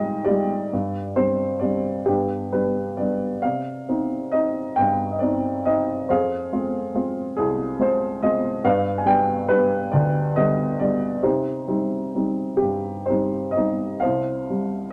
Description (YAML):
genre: classical, lyrical solo piano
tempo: 42-48 BPM (dotted quarters)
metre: 6/8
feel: rubato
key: C minor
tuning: A4 = 444 Hz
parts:
  - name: dark upright piano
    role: solo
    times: 0.0-14.9 s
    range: C2 to Ab5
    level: -23 LUFS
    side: equal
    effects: none
room: moderate studio reverb, RT60 0.6 s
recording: none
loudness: -23 LUFS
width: mono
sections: 0.0-14.0 A section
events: none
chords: 0.0 Fmadd9/Ab; 0.7 Gsus4; 2.1 G; 3.4 Cmadd9; 6.1 Fm; 8.6 G; 11.2 Cm; 14.0 C5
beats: | 0.71 2.06 | 3.42 4.77 | 6.08 7.38 | 8.64 9.92 | 11.24 12.62 | 14.02